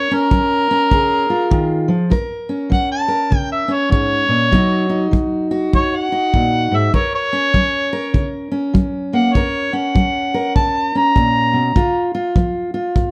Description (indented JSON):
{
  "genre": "acoustic country blues, solo or duo",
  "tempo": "100 BPM",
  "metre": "4/4",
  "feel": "swing 63% on 8ths",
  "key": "F# major",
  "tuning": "A4 = 443 Hz",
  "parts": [
    { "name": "mellow harmonica", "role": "melody", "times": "0.0-12.1 s", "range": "A#4 to A#5", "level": "-20 LUFS", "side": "equal", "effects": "plate reverb" },
    { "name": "fingerpicked steel-string acoustic guitar", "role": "accompaniment", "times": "0.0-13.1 s", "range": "F#2 to A#4", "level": "-21 LUFS", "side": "equal", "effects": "none" },
    { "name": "kick drum", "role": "drums", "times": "0.3-13.1 s", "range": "none", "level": "-20 LUFS", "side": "equal", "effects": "none" }
  ],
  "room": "light reverb",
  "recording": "none",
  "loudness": "-17 LUFS",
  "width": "mono",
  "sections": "0.0-2.1 A section; 2.1-13.1 A section",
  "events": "harmonica solo 0.0-13.1",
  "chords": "0.0 F#; 0.9 C#; 2.1 F#; 4.5 B; 6.9 F#; 11.8 C#"
}